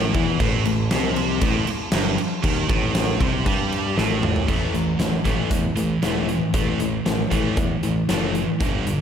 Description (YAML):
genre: hard rock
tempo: 117 BPM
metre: 4/4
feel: straight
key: unclear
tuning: A4 = 436 Hz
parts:
  - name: high-gain distorted guitar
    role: riff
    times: 0.0-9.0 s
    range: G2 to A3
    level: -25 LUFS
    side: right 8 dB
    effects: distortion
  - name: overdriven semi-hollow guitar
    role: riff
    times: 0.0-9.0 s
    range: G2 to A3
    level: -26 LUFS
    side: left 7 dB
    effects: slapback echo
  - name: picked electric bass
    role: bass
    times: 0.0-9.0 s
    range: E1 to G2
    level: -27 LUFS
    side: equal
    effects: none
  - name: huge arena drum kit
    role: drums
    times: 0.1-9.0 s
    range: crash cymbal, hi-hat, kick drum, snare drum, toms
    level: -23 LUFS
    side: equal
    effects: none
room: moderate concert hall reverb, RT60 2.0 s, small room ambience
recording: big arena sound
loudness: -19 LUFS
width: side -8 dB against mid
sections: 0.0-4.5 A section; 4.5-9.0 B section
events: drum fill 4.0-4.5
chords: 0.0 A5